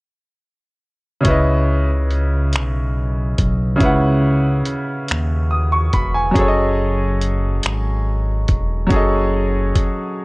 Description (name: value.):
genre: slow six-eight R&B.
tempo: 47 BPM (dotted quarters).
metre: 6/8.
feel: straight.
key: unclear.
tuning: A4 = 440 Hz.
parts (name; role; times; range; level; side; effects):
bright grand piano; accompaniment; 1.2-10.2 s; C#3 to D#6; -19 LUFS; equal; none.
dusty soul sampler-style drum kit; drums; 1.2-10.0 s; finger snaps, hi-hat, kick drum; -19 LUFS; equal; none.
smooth gliding synth bass; bass; 1.3-9.8 s; E1 to D#2; -18 LUFS; equal; none.
room: little or no reverb.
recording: worn, warbling old tape, cassette tape, warbly pitch drift.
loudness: -15 LUFS.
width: side -24 dB against mid.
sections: 1.3-10.2 A section.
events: none.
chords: 1.3 C#m9; 6.4 F#m69.